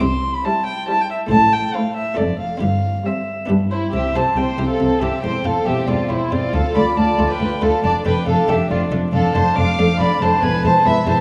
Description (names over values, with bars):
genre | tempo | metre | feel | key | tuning
classical, baroque-style concerto movement with solo episodes | 138 BPM | 3/4 | straight | C major | A4 = 440 Hz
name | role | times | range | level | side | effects
dark violin | melody | 0.0-11.2 s | C5 to D6 | -23 LUFS | equal | none
buff-stop harpsichord | accompaniment | 0.0-11.2 s | D2 to C5 | -27 LUFS | equal | none
warm chamber cello section | bass | 0.0-11.1 s | D2 to C3 | -24 LUFS | equal | none
warm studio double bass section | bass | 0.0-11.2 s | E1 to D2 | -27 LUFS | equal | none
warm chamber violin section | melody | 0.4-11.2 s | E4 to F5 | -29 LUFS | equal | none
warm chamber viola section | accompaniment | 0.4-11.2 s | G3 to F4 | -30 LUFS | equal | none
rich chamber violin section | second line | 0.5-11.2 s | C4 to F5 | -28 LUFS | equal | none
room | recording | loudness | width
wet scoring stage reverb, RT60 1.9 s | none | -18 LUFS | mono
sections
0.0-3.9 A section; 3.9-11.2 A section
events
none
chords
0.0 C; 1.3 Am; 2.2 Dm/F; 2.6 C/G; 3.5 G; 3.9 C; 5.2 C/E; 6.5 Dm; 7.8 Dm/F; 10.4 E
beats
| 0.02 0.45 0.88 | 1.32 1.75 2.18 | 2.62 3.06 3.50 | 3.94 4.37 4.80 | 5.24 5.67 6.10 | 6.54 6.97 7.41 | 7.84 8.27 8.70 | 9.13 9.56 10.00 | 10.43 10.86